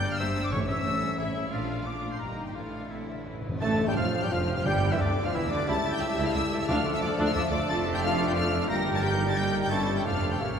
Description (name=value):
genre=classical, dramatic, fast romantic movement for symphony orchestra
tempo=177 BPM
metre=3/4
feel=rubato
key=D minor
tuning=A4 = 440 Hz
part: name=warm symphonic violin section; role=melody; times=0.0-10.6 s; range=E5 to Bb6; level=-35 LUFS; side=left 2 dB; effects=none
part: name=bright clarinet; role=second line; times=0.0-10.6 s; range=D4 to F5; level=-39 LUFS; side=left 2 dB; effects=none
part: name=clear oboe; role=second line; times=0.0-10.6 s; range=E4 to A5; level=-37 LUFS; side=equal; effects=none
part: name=mellow silver concert flute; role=second line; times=0.0-10.5 s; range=D5 to G6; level=-38 LUFS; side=left 2 dB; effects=none
part: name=rich symphonic violin section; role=second line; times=0.0-10.6 s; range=C#4 to Bb5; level=-37 LUFS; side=left 2 dB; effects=none
part: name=warm symphonic viola section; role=accompaniment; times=0.0-10.6 s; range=D3 to Bb4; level=-35 LUFS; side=equal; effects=none
part: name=mellow French horn section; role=sustained chords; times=0.0-10.6 s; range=D3 to G4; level=-36 LUFS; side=left 3 dB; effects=none
part: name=rich symphonic cello section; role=bass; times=0.0-10.6 s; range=C#2 to E3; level=-35 LUFS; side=right 2 dB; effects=none
part: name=rich symphonic double bass section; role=bass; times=0.0-10.6 s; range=E1 to D2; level=-34 LUFS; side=right 2 dB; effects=none
part: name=timpani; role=percussion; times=0.5-1.0, 3.3-7.1 s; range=A2 to D3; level=-36 LUFS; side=equal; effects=none
part: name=cymbal swell and tam-tam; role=percussion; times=1.5-5.0 s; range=none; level=-43 LUFS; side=left 2 dB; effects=none
part: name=warm bassoon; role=accompaniment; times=3.6-10.6 s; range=D3 to Bb3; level=-36 LUFS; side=equal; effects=none
part: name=warm trombone section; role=sustained chords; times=3.6-10.6 s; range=C#3 to Bb3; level=-36 LUFS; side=right 2 dB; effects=none
part: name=dark trumpet section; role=stabs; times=3.6-10.6 s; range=G4 to A5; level=-35 LUFS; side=right 1 dB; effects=none
part: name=mellow tuba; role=bass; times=3.6-10.6 s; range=E1 to D2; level=-35 LUFS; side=right 1 dB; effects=none
room=wet concert hall reverb, RT60 2.6 s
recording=recorded in a church or concert hall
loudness=-25 LUFS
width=side -7 dB against mid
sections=0.0-3.6 A section; 3.6-10.6 B section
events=timpani fill 3.3-3.6; band accent 3.6-4.0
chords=0.0 Gm; 0.5 A7; 1.5 Bbmaj7; 2.2 Eb/G; 2.6 Asus4; 3.3 A; 3.6 Fadd9; 4.7 G5; 5.7 A7/C#; 6.7 Dm; 7.7 Dm/F; 8.7 Eb/G; 9.7 A7/G; 10.1 Dm/F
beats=0.20 | 0.53 0.86 1.20 | 1.53 1.87 2.21 | 2.56 2.91 3.27 | 3.62 3.97 4.31 | 4.66 5.00 5.34 | 5.68 6.01 6.36 | 6.69 7.02 7.35 | 7.69 8.03 8.36 | 8.69 9.03 9.37 | 9.71 10.06 10.41